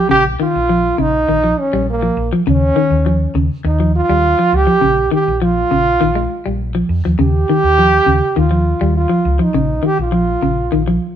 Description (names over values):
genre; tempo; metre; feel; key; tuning
afrobeat; 102 BPM; 4/4; straight; Eb mixolydian; A4 = 439 Hz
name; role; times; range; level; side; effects
mellow trombone; melody; 0.0-11.1 s; Bb3 to G4; -15 LUFS; right 2 dB; none
clean electric guitar; arpeggios; 0.0-11.1 s; Db3 to Ab3; -17 LUFS; left 2 dB; none
hollow-body short-scale fingered electric bass; bass; 0.1-11.0 s; Bb1 to F2; -18 LUFS; equal; none
room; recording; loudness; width
moderate stone room reverb, RT60 1.1 s; band playing live in one room; -12 LUFS; side -10 dB against mid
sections
0.0-11.2 A section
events
none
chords
0.1 Bbmadd11; 2.5 Eb7sus2; 4.8 Bbm; 7.2 Eb9; 9.5 Bbmadd11